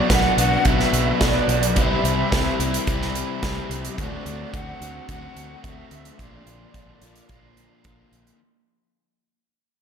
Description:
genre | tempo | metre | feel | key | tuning
rock, shoegaze and dream pop | 108 BPM | 4/4 | straight | unclear | A4 = 440 Hz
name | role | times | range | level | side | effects
breathy shakuhachi | melody | 0.0-7.9 s | D5 to G5 | -26 LUFS | right 3 dB | tape echo
biting overdriven guitar | riff | 0.0-8.4 s | Bb2 to F#4 | -28 LUFS | right 8 dB | reverse reverb
overdriven semi-hollow guitar | riff | 0.0-8.4 s | Bb2 to F#4 | -26 LUFS | left 7 dB | wide subtle chorus
fingered electric bass | bass | 0.1-8.3 s | Bb1 to D2 | -27 LUFS | equal | none
big rock drum kit | drums | 0.1-8.4 s | hi-hat, kick drum, snare drum | -24 LUFS | right 1 dB | none
room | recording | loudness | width
wet plate reverb, RT60 1.9 s, studio reverb | dreamy mix soaked in reverb | -19 LUFS | side -7 dB against mid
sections
0.0-8.4 A section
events
fade-out 0.0-8.4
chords
0.0 Bm; 1.8 C; 4.0 D7; 6.2 Bb

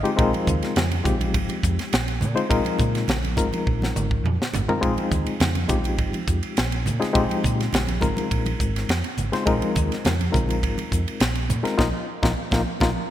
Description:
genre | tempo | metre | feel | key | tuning
electric jazz fusion | 104 BPM | 4/4 | straight | unclear | A4 = 438 Hz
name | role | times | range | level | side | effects
barky reed electric piano | accompaniment | 0.0-12.9 s | Ab3 to Eb5 | -25 LUFS | left 3 dB | overdrive, medium tremolo
hollow-body short-scale fingered electric bass | bass | 0.0-12.9 s | Ab1 to Bb2 | -25 LUFS | right 1 dB | none
crisp fusion drum kit | drums | 0.1-12.9 s | hi-hat, kick drum, ride cymbal, snare drum, toms | -25 LUFS | right 1 dB | none
congas | percussion | 0.3-12.9 s | none | -31 LUFS | right 2 dB | none
room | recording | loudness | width
moderate lush hall reverb, RT60 2.0 s, small room ambience | bright 1980s-style digital production | -20 LUFS | side -12 dB against mid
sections
0.0-13.1 A section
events
reed electric piano fill 0.0, 12.9; drum fill 3.7-4.8; band accent 11.8-13.1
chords
0.0 Bb9sus4

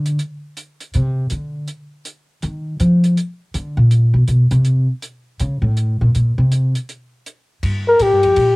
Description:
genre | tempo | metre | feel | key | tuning
jazz, small-group swing and bop | 162 BPM | 4/4 | swing 64% on 8ths | unclear | A4 = 440 Hz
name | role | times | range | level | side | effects
upright bass | bass | 0.0-8.6 s | F2 to F3 | -15 LUFS | equal | none
compact cocktail drum kit | drums | 0.1-8.5 s | hi-hat, kick drum, ride cymbal | -30 LUFS | equal | cassette tape
mellow flugelhorn | melody | 7.9-8.6 s | G4 to Bb4 | -12 LUFS | left 2 dB | none
room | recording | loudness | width
little or no reverb | home recording on cassette | -14 LUFS | side -24 dB against mid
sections
0.0-7.6 A section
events
upright bass solo 0.0-7.6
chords
0.2 N.C.; 0.9 Csus2; 1.7 Ebsus2; 3.2 Bb; 3.9 Bbsus2; 4.7 N.C.; 5.4 A; 6.1 Bbsus2; 6.9 N.C.; 7.6 Gm7

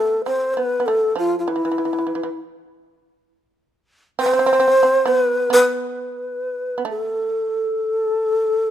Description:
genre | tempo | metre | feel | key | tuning
japanese traditional, Japanese chamber music | 67 BPM | 4/4 | rubato | A hirajoshi | A4 = 440 Hz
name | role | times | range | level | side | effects
breathy long shakuhachi | melody | 0.0-8.7 s | E4 to C5 | -18 LUFS | equal | none
shamisen | second line | 0.0-8.7 s | E3 to C4 | -25 LUFS | right 6 dB | none
room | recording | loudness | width
light reverb | close, detailed microphones | -17 LUFS | side -10 dB against mid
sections
0.0-8.7 A section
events
none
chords
none

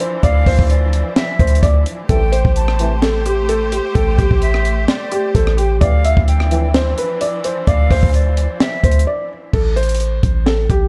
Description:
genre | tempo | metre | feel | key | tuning
hip hop, trap | 129 BPM | 4/4 | half-time | A minor | A4 = 440 Hz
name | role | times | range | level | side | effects
felt-muted upright piano | melody | 0.0-10.9 s | G4 to E5 | -22 LUFS | equal | low-pass filter, tape echo
clear studio string section | sustained chords | 0.0-9.5 s | E3 to C5 | -30 LUFS | equal | none
compact cocktail drum kit | drums | 0.0-10.8 s | crash cymbal, hi-hat, kick drum, rim click, snare drum | -19 LUFS | equal | none
mellow hollow concert flute | second line | 0.2-9.0 s | C5 to A5 | -28 LUFS | equal | tape echo
warm 808-style bass | bass | 0.2-10.9 s | A1 to D2 | -18 LUFS | equal | none
mellow brass ensemble | stabs | 2.1-2.9, 5.8-6.7 s | F2 to E3 | -26 LUFS | equal | none
room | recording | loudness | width
small room ambience | dark, warm production | -15 LUFS | mono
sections
0.0-9.5 A section; 9.5-10.9 B section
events
break 9.1-9.5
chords
0.0 Dmadd9; 2.1 Am7; 5.8 Dmadd9; 9.5 Am

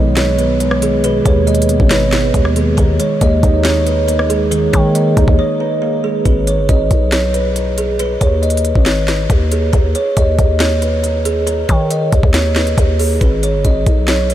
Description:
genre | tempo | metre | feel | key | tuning
hip hop, trap | 138 BPM | 4/4 | half-time | G# minor | A4 = 441 Hz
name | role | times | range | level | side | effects
kalimba | melody | 0.0-14.3 s | G#4 to D#5 | -17 LUFS | right 1 dB | low-pass filter, tape echo
muted felt-like synth keys | accompaniment | 0.0-6.3 s | B2 to D#5 | -18 LUFS | right 1 dB | chorus, low-pass filter
growling 808-style bass | bass | 0.0-14.3 s | G1 to D#3 | -16 LUFS | equal | none
trap drum kit | drums | 0.2-14.3 s | handclaps, hi-hat, kick drum, rim click, snare drum | -16 LUFS | equal | none
room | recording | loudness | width
moderate huge ambient reverb, RT60 8.8 s | dreamy mix soaked in reverb | -12 LUFS | side -12 dB against mid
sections
0.0-6.3 A section; 6.3-14.3 B section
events
break 5.4-6.3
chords
0.0 G#m; 2.8 D#sus4; 6.3 G#m; 9.7 N.C.; 13.2 G#m

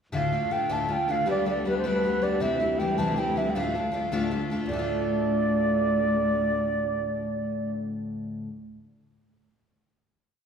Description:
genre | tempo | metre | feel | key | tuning
celtic folk, Celtic jig | 105 BPM (dotted quarters) | 6/8 | straight | D dorian | A4 = 435 Hz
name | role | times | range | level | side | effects
baroque flute | melody | 0.1-7.7 s | B4 to A5 | -27 LUFS | right 3 dB | none
picked twelve-string acoustic guitar | accompaniment | 0.1-8.5 s | D2 to F4 | -28 LUFS | left 3 dB | none
rich cello | drone | 0.1-7.8 s | D2 | -36 LUFS | equal | none
room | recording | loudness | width
wet recital hall reverb, RT60 1.8 s | recorded in a church or concert hall | -24 LUFS | side -7 dB against mid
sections
0.1-4.7 A section; 4.7-7.0 final chord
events
none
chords
0.1 Dm; 1.3 Gadd9; 2.4 C; 3.5 Dm

